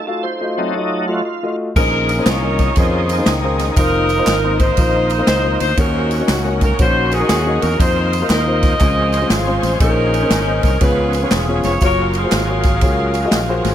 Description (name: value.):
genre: uptempo gospel.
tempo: 119 BPM.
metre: 4/4.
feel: swing 66% on 8ths.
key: Bb minor.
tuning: A4 = 439 Hz.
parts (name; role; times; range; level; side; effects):
bright tonewheel organ; sustained chords; 0.0-13.7 s; Eb3 to C5; -24 LUFS; right 1 dB; slow rotary speaker, overdrive, chorus vibrato.
mellow French horn section; sustained chords; 0.0-1.8 s; Gb3 to F4; -30 LUFS; right 2 dB; none.
dark baby grand piano; accompaniment; 0.1-13.7 s; Bb2 to F5; -22 LUFS; left 3 dB; none.
warm saxophone section; melody; 1.8-13.7 s; C4 to F5; -19 LUFS; equal; analog delay.
fingered electric bass; bass; 1.8-13.7 s; E1 to F2; -20 LUFS; equal; none.
swinging big-band drum kit; drums; 1.8-13.7 s; crash cymbal, kick drum, ride cymbal, snare drum; -19 LUFS; equal; analog delay.
tambourine and handclaps; percussion; 1.8-13.7 s; none; -30 LUFS; right 7 dB; none.
room: light reverb.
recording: echo-heavy mix.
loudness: -14 LUFS.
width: side -10 dB against mid.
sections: 0.0-1.8 A section; 1.8-13.7 B section.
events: break 0.0-1.8; tonewheel organ solo 0.0-1.8.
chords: 0.0 F7b9; 1.8 Bbm11; 3.8 F7sus4; 5.8 Ebm7; 7.8 F7sus4; 8.8 Dbmaj7; 9.8 Bbm11; 10.8 Db7; 11.8 Gbmaj9.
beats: 0.25 0.75 1.26 | 1.76 2.26 2.77 3.27 | 3.77 4.27 4.78 5.28 | 5.78 6.29 6.79 7.29 | 7.79 8.30 8.80 9.30 | 9.80 10.31 10.81 11.31 | 11.81 12.31 12.82 13.32.